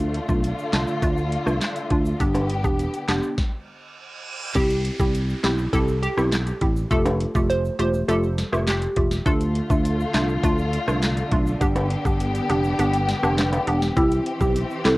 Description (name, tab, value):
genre	dancehall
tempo	102 BPM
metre	4/4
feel	straight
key	C major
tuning	A4 = 440 Hz
part	hollow square pluck	accompaniment	0.0-15.0 s	A3 to G4	-25 LUFS	right 1 dB	chorus, cassette tape
part	warm studio string section	sustained chords	0.0-3.4, 9.3-15.0 s	D3 to G4	-28 LUFS	left 2 dB	sidechain pumping, cassette tape
part	fingered electric bass	bass	0.0-15.0 s	E1 to D2	-25 LUFS	equal	none
part	afro-pop drum kit	drums	0.0-15.0 s	crash cymbal, handclaps, hi-hat, kick drum, rim click, snare drum	-25 LUFS	equal	cassette tape
part	egg shaker and timbales	percussion	0.3-14.8 s	none	-30 LUFS	equal	none
part	reverse cymbal and downlifter	sound effects	3.7-9.3 s	none	-37 LUFS	right 2 dB	none
part	glassy wavetable pluck	second line	4.6-13.6 s	F4 to C5	-28 LUFS	right 1 dB	chorus, cassette tape, analog delay
part	buzzing marimba with medium mallets	melody	14.0-15.0 s	E4 to A4	-23 LUFS	equal	cassette tape
room	little or no reverb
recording	home recording on cassette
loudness	-20 LUFS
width	side -20 dB against mid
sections	0.0-4.6 A section; 4.6-14.0 B section; 14.0-15.0 C section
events	stop 3.4-4.6; reverse cymbal 3.7-4.6; kick muted 12.8-14.0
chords	0.0 Dm; 2.2 G; 4.6 C; 6.9 Fadd9; 9.3 Dm; 11.6 G; 14.0 C